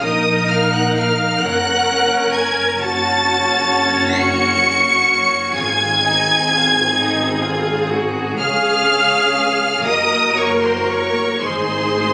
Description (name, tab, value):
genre	classical, slow romantic movement for string orchestra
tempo	37-44 BPM (dotted quarters)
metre	6/8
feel	rubato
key	unclear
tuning	A4 = 441 Hz
part	rich studio violin section	melody	0.0-12.1 s	C6 to Db7	-20 LUFS	equal	none
part	rich studio violin section	second line	0.0-12.1 s	C5 to Db6	-24 LUFS	equal	none
part	clear studio viola section	accompaniment	0.0-12.1 s	Ab3 to Db5	-25 LUFS	equal	none
part	clear studio cello section	bass	0.0-12.1 s	Eb4 to Bb4	-23 LUFS	equal	none
part	rich studio double bass section	bass	0.0-12.1 s	Gb1 to Db2	-28 LUFS	equal	none
room	moderate scoring stage reverb, RT60 1.6 s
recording	recorded on a phone in the room, studio reverb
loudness	-16 LUFS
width	mono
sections	0.0-12.1 A section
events	none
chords	0.0 Ebmadd9/Bb; 1.4 Gb; 2.8 Gbm; 5.6 Ab; 8.4 Db; 9.9 Gb; 11.4 Ab